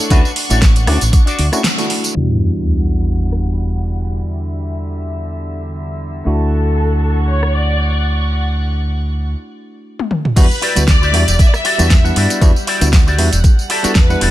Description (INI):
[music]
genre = nu-disco, nu disco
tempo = 117 BPM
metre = 4/4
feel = swing 55% on 16ths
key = E dorian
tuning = A4 = 440 Hz
[part]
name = barky tine electric piano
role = accompaniment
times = 0.0-14.3 s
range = G3 to F#5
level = -23 LUFS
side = equal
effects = low-pass filter, ping-pong delay
[part]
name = dark studio string section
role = sustained chords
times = 0.0-14.3 s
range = D3 to C#6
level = -28 LUFS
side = equal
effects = vintage 12-bit sampler grit, sidechain pumping, low-pass filter
[part]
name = pop drum kit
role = drums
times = 0.0-3.4, 7.4-14.3 s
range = crash cymbal, hi-hat, rim click, snare drum, tambourine, toms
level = -19 LUFS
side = equal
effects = small room ambience
[part]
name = electric guitar with an envelope filter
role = riff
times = 0.1-1.7, 10.6-14.3 s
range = D4 to D5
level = -21 LUFS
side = left 4 dB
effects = analog chorus, ping-pong delay
[part]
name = fingered electric bass with an envelope filter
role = bass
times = 0.1-14.3 s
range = E1 to G2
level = -16 LUFS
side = equal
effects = sidechain pumping
[part]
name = electronic kick drum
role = drums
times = 0.1-1.2, 10.4-14.1 s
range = none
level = -10 LUFS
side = equal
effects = overdrive, small room ambience
[part]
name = sub drop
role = sound effects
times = 2.2-4.2 s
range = none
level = -19 LUFS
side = equal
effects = none
[part]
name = warm symphonic violin section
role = melody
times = 6.3-14.3 s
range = A4 to E5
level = -22 LUFS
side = equal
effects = digital delay
[sound]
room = little or no reverb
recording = low-pass filter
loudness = -12 LUFS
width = side -14 dB against mid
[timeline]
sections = 0.0-2.2 A section; 2.2-10.4 B section; 10.4-14.3 C section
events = filter sweep on tine electric piano 0.0-2.2, 2.2-10.4; break 1.6-2.2, 9.3-10.4; band accent 1.6; impact 2.2-4.2; filter sweep on string section 2.2-10.4; filter sweep 2.2-10.4; drum fill 10.0-10.4; drop 10.4-14.3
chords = 0.0 Dmaj7; 2.2 Em9; 6.3 Dmaj7; 10.4 Em9